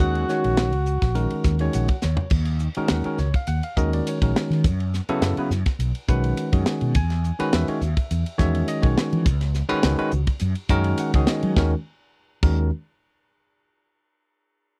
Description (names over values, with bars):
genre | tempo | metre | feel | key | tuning
electric jazz fusion | 104 BPM | 4/4 | swing 53% on 16ths | Eb minor | A4 = 443 Hz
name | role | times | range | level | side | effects
breathy trumpet | melody | 0.0-1.7 s | Gb4 | -28 LUFS | equal | slapback echo
overdriven electric guitar | second line | 0.0-1.7 s | Gb5 | -39 LUFS | equal | none
barky tine electric piano | accompaniment | 0.0-12.7 s | Db3 to G#5 | -27 LUFS | equal | none
fretless electric bass | bass | 0.0-12.7 s | Bb1 to Gb3 | -25 LUFS | equal | ensemble chorus
tight funk drum kit | drums | 0.0-12.6 s | crash cymbal, hi-hat, kick drum, ride cymbal, snare drum, toms | -25 LUFS | equal | none
room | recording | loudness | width
little or no reverb | dry, close 1970s-style studio recording | -22 LUFS | mono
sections
0.0-2.3 A section; 2.3-11.6 B section; 11.6-13.9 C section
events
tine electric piano fill 1.4-2.3, 10.7-11.6; drum fill 2.0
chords
0.0 Ebm7; 4.6 Gbm7; 5.8 Badd9; 6.9 Emaj9; 9.3 Db5; 10.4 Gbadd9; 11.6 Ebm7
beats
| 0.00 0.58 1.16 1.74 | 2.32 2.90 3.48 4.05 | 4.63 5.21 5.79 6.37 | 6.95 7.52 8.10 8.68 | 9.25 9.83 10.41 10.98 | 11.56 12.13